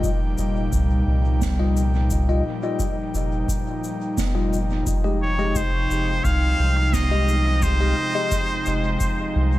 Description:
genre	ambient dub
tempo	87 BPM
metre	4/4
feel	straight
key	F minor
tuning	A4 = 440 Hz
part	airy breathy pad	sustained chords	0.0-9.6 s	Bb2 to G5	-27 LUFS	left 1 dB	chorus
part	bell-like tine electric piano	stabs	0.0-8.4 s	G3 to Eb5	-29 LUFS	left 4 dB	analog chorus, dub echo
part	soft dub sub bass	bass	0.0-9.6 s	F1 to C2	-21 LUFS	equal	none
part	electronic kick drum	drums	0.0-9.1 s	none	-27 LUFS	equal	studio reverb
part	shaker and snare drum	drums	0.0-9.1 s	none	-32 LUFS	right 3 dB	studio reverb, dub echo
part	trumpet with straight mute	melody	5.2-9.4 s	C5 to F5	-24 LUFS	equal	dub echo
room	light reverb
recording	none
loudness	-19 LUFS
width	side -16 dB against mid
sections	0.0-9.6 A section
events	none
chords	0.0 Ebadd9/F; 4.9 Fm9

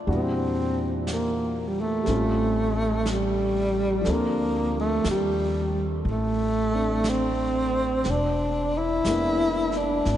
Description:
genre	jazz ballad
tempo	60 BPM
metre	4/4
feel	swing 68% on 8ths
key	unclear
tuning	A4 = 440 Hz
part	warm concert grand piano	accompaniment	0.0-10.2 s	Bb2 to A4	-30 LUFS	equal	none
part	breathy tenor saxophone	melody	0.1-10.2 s	G3 to E4	-24 LUFS	equal	none
part	upright bass	bass	0.1-10.2 s	E1 to E2	-29 LUFS	equal	none
part	vintage brush drum kit	drums	0.1-10.2 s	brushed snare drum, hi-hat, snare drum	-38 LUFS	equal	none
room	wet cathedral reverb, RT60 4.9 s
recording	in a vast, echoing space, nothing above 10.6 kHz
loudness	-22 LUFS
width	side -11 dB against mid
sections	0.0-10.2 A section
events	none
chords	0.1 Em7b5; 2.1 A7alt; 4.1 Dm7; 8.1 E7#11

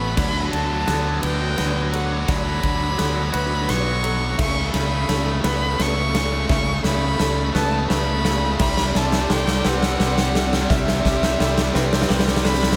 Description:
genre	post-rock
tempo	57 BPM (dotted quarters)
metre	6/8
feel	straight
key	D major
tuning	A4 = 440 Hz
part	dark violin	melody	0.0-12.8 s	E5 to C#6	-28 LUFS	equal	digital delay
part	felt-muted upright piano	arpeggios	0.0-12.8 s	A4 to E5	-35 LUFS	equal	digital delay
part	twangy electric guitar	arpeggios	0.0-12.8 s	C3 to A4	-33 LUFS	equal	digital delay
part	biting overdriven guitar	riff	0.0-12.8 s	C3 to B3	-28 LUFS	equal	none
part	fuzz fingered electric bass	bass	0.0-12.8 s	A1 to D2	-26 LUFS	equal	overdrive
part	huge arena drum kit	drums	0.2-12.8 s	crash cymbal, kick drum, ride cymbal, snare drum	-26 LUFS	equal	none
room	light reverb, small room ambience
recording	none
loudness	-20 LUFS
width	mono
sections	0.0-12.8 A section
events	build-up 0.0-12.8; drum fill 0.0-12.8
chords	0.2 D6; 4.4 Aadd9/C#; 8.6 C

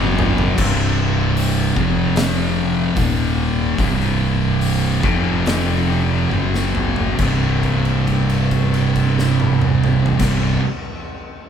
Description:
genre	stoner and doom metal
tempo	68-76 BPM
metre	4/4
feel	straight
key	C minor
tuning	A4 = 440 Hz
part	fuzz guitar	riff	0.0-0.6 s	F#2 to F#3	-24 LUFS	right 1 dB	distortion
part	thick fuzz guitar	riff	0.0-10.6 s	C2 to F#3	-19 LUFS	left 2 dB	distortion
part	thick fuzz guitar	riff	0.0-10.6 s	C2 to F#3	-21 LUFS	right 6 dB	distortion
part	fuzz fingered electric bass	bass	0.0-10.6 s	C1 to F#1	-23 LUFS	left 1 dB	overdrive
part	oversized low-tuned drum kit	drums	0.2-10.4 s	crash cymbal, hi-hat, kick drum, snare drum, toms	-23 LUFS	left 1 dB	none
room	moderate large studio reverb, RT60 1.2 s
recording	band playing live in one room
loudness	-15 LUFS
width	side -8 dB against mid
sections	0.6-7.2 A section; 7.2-10.7 B section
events	drum fill 0.0-0.6, 6.3-7.2; slowing down 0.6-7.2; held note 7.2-10.2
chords	0.0 F#5; 0.6 C5; 1.8 F5; 3.0 Eb5; 3.8 C5; 5.0 F5; 6.3 F#5; 7.2 C5

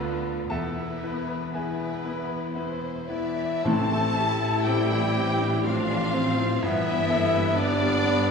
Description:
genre	classical, romantic movement for piano and orchestra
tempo	52-63 BPM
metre	3/4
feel	rubato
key	A minor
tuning	A4 = 440 Hz
part	clear grand piano	melody	0.0-8.3 s	D2 to A5	-30 LUFS	left 2 dB	none
part	dark symphonic violin section	melody	0.0-8.3 s	B4 to A5	-33 LUFS	left 3 dB	none
part	warm symphonic violin section	second line	0.0-8.3 s	E4 to A5	-33 LUFS	left 1 dB	none
part	warm symphonic viola section	accompaniment	0.0-8.3 s	B3 to E4	-32 LUFS	left 1 dB	none
part	mellow French horn section	sustained chords	0.0-8.3 s	D3 to F4	-34 LUFS	left 3 dB	none
part	rich symphonic cello section	bass	0.0-8.3 s	E2 to D3	-34 LUFS	right 2 dB	none
part	warm symphonic double bass section	bass	0.0-8.3 s	E1 to D2	-34 LUFS	right 1 dB	none
part	hollow concert flute	second line	3.1-8.3 s	D5 to A5	-32 LUFS	equal	none
part	mellow clarinet	second line	3.1-8.3 s	D4 to A4	-31 LUFS	equal	none
part	mellow trombone section	sustained chords	3.6-7.0 s	E3 to C4	-38 LUFS	right 1 dB	none
part	warm tuba	bass	3.6-8.3 s	G1 to A1	-33 LUFS	right 1 dB	none
part	timpani	percussion	3.7-5.1 s	A2	-31 LUFS	left 1 dB	none
room	wet scoring stage reverb, RT60 1.4 s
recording	heard from further back in the room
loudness	-23 LUFS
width	side -5 dB against mid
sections	0.0-3.6 A section; 3.6-8.3 B section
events	none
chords	0.0 Bm7b5/D; 0.5 E; 3.6 Am; 6.6 Em/G

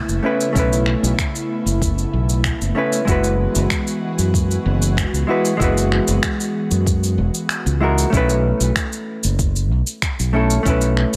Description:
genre	sunset chillout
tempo	95 BPM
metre	4/4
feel	straight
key	unclear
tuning	A4 = 441 Hz
part	hollow-body jazz guitar	accompaniment	0.0-11.2 s	G#3 to B4	-24 LUFS	equal	digital delay
part	airy breathy pad	sustained chords	0.0-8.1 s	C#3 to F#4	-28 LUFS	equal	chorus
part	fingered electric bass	bass	0.1-11.2 s	E1 to F#2	-21 LUFS	equal	none
part	cabasa and finger snaps	drums	0.1-11.2 s	none	-27 LUFS	equal	none
part	electronic kick drum	drums	0.6-10.8 s	none	-24 LUFS	equal	none
room	light reverb, studio reverb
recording	none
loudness	-19 LUFS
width	mono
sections	0.0-8.1 A section; 8.1-11.2 B section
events	kick drops out 7.5-8.1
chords	0.0 B9sus4; 3.1 F#9sus4; 8.1 B9sus4

